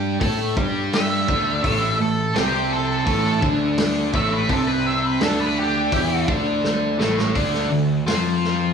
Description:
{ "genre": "blues rock power trio and southern rock", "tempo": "84 BPM", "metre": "4/4", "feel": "straight", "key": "unclear", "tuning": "A4 = 440 Hz", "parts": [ { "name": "biting overdriven guitar", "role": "riff", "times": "0.0-8.7 s", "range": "A2 to A4", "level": "-21 LUFS", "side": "equal", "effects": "none" }, { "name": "fuzz picked electric bass", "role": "bass", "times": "0.0-8.7 s", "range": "A1 to A2", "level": "-26 LUFS", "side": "equal", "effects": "overdrive" }, { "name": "vintage drum kit", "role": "drums", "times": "0.2-8.5 s", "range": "hi-hat, kick drum, snare drum", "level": "-25 LUFS", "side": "equal", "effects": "none" }, { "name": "octave-fuzz lead guitar", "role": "melody", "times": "0.9-6.3 s", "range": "G4 to E5", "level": "-23 LUFS", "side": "right 1 dB", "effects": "distortion" } ], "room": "light reverb", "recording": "band playing live in one room, studio reverb", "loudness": "-18 LUFS", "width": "side -6 dB against mid", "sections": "0.0-8.7 A section", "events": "drum fill 6.6-7.4", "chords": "0.0 D5; 1.6 A5; 7.4 Dm" }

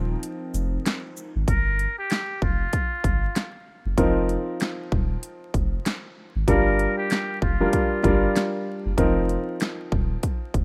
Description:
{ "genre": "hip hop, boom-bap hip-hop", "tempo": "96 BPM", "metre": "4/4", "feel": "swing 61% on 16ths", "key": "unclear", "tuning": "A4 = 440 Hz", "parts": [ { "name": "warm upright piano", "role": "accompaniment", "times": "0.0-10.6 s", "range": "F3 to Bb4", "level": "-27 LUFS", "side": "equal", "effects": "cassette tape, high-pass filter, low-pass filter" }, { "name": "warm analog pad", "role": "sustained chords", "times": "0.0-1.4 s", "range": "F3 to Bb4", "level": "-38 LUFS", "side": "equal", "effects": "chorus, phaser, high-pass filter, low-pass filter" }, { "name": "soft dub sub bass", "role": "bass", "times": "0.0-10.6 s", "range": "Eb1 to Ab1", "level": "-28 LUFS", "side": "equal", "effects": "none" }, { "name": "big-room dance drum kit", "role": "drums", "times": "0.2-10.6 s", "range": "hi-hat, kick drum, shaker, snare drum", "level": "-28 LUFS", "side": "equal", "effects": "overdrive" }, { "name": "trumpet with metal mute", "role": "melody", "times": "1.5-8.5 s", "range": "F4 to Bb4", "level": "-31 LUFS", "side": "equal", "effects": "high-pass filter, low-pass filter, analog delay" } ], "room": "digital ambience", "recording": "rough home demo mix, vinyl crackle", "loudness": "-24 LUFS", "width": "mono", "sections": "0.0-1.5 A section; 1.5-10.6 B section", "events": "break 0.0-1.5", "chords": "0.0 F7sus4; 1.5 Fsus2; 4.0 F7sus4; 6.5 Gm7; 9.0 F7sus4" }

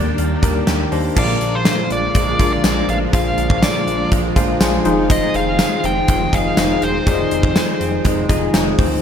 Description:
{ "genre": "1980s-style pop", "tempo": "122 BPM", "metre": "4/4", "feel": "straight", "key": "Bb mixolydian", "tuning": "A4 = 437 Hz", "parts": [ { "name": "dark smooth lead guitar", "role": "melody", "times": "0.0-8.3 s", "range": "C5 to G5", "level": "-22 LUFS", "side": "left 1 dB", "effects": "overdrive, ping-pong delay" }, { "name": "bell-like tine electric piano", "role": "accompaniment", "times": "0.0-9.0 s", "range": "Bb2 to Ab5", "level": "-22 LUFS", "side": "left 4 dB", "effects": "fast stereo tremolo" }, { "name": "string machine, violins", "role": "sustained chords", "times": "0.0-9.0 s", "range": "D3 to G4", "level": "-24 LUFS", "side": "equal", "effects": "ensemble chorus" }, { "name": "direct-recorded clean electric guitar", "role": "riff", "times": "0.0-9.0 s", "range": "Eb3 to Ab4", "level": "-26 LUFS", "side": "right 4 dB", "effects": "wide subtle chorus" }, { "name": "smooth synth bass", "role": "bass", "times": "0.0-9.0 s", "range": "E1 to Eb2", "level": "-24 LUFS", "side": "equal", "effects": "none" }, { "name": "gated 80s drum kit", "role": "drums", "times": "0.2-8.9 s", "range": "crash cymbal, hi-hat, kick drum, snare drum, tambourine", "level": "-18 LUFS", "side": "equal", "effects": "gated reverb" }, { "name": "funky polysynth comp", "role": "stabs", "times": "1.2-8.8 s", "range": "F3 to Bb4", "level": "-26 LUFS", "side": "right 1 dB", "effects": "none" } ], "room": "moderate plate reverb, RT60 2.8 s", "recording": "bright 1980s-style digital production", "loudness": "-14 LUFS", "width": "side -8 dB against mid", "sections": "0.0-1.2 A section; 1.2-9.0 B section", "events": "tine electric piano fill 4.1-5.1", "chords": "0.0 Ebmaj7; 1.2 Bb7; 4.9 Fm7" }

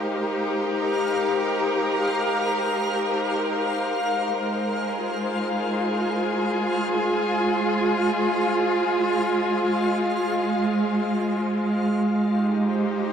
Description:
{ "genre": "ambient", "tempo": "free time", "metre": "none", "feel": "none", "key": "Ab major", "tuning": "A4 = 445 Hz", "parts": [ { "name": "rich chamber string section", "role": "sustained chords", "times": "0.0-13.1 s", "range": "Ab3 to C5", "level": "-22 LUFS", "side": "equal", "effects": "none" }, { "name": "backwards swelling texture", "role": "texture", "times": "0.0-11.9 s", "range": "F5 to F6", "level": "-31 LUFS", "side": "left 3 dB", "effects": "built-in reverb" } ], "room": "wet huge ambient reverb, RT60 8.2 s", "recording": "dark, warm production", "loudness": "-21 LUFS", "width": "side -8 dB against mid", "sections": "0.0-11.9 A section; 11.9-13.1 B section", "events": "none", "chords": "0.0 Abmaj9; 4.4 Fm/Ab; 11.9 Abmaj7" }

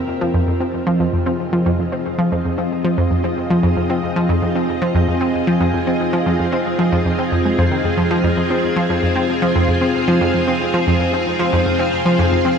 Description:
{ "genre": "ambient, sequencer-driven space music", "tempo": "114 BPM", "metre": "4/4", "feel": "straight", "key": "F minor", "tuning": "A4 = 441 Hz", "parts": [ { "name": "string machine, full ensemble", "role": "sustained chords", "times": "0.0-12.6 s", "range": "C4 to F5", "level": "-19 LUFS", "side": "right 1 dB", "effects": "ensemble chorus" }, { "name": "concert harp", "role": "arpeggios", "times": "0.0-12.6 s", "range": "C4 to C5", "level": "-28 LUFS", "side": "left 4 dB", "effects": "none" }, { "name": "analog pluck", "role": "riff", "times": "0.0-12.5 s", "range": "F2 to C4", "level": "-17 LUFS", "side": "equal", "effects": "chorus, ping-pong delay" } ], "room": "moderate huge ambient reverb, RT60 7.6 s", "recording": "none", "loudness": "-15 LUFS", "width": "side -6 dB against mid", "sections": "0.0-12.6 A section", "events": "none", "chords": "0.0 Fm7" }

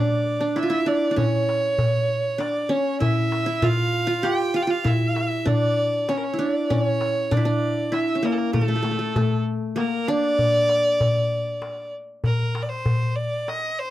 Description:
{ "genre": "Arabic maqam ensemble", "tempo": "98 BPM", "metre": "3/4", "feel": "straight", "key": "D maqam nahawand", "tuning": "A4 = 439 Hz", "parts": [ { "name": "clear violin", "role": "melody", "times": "0.0-13.9 s", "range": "A4 to G5", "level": "-24 LUFS", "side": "right 1 dB", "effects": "none" }, { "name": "qanun", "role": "second line", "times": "0.0-11.9 s", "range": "A3 to G4", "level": "-24 LUFS", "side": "right 1 dB", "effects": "none" }, { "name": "darbuka", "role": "percussion", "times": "0.1-13.6 s", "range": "none", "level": "-24 LUFS", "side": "left 1 dB", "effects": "none" } ], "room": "little or no reverb", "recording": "dry, close 1970s-style studio recording", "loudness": "-20 LUFS", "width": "side -14 dB against mid", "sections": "0.0-12.2 A section; 12.2-13.9 B section", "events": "none", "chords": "none" }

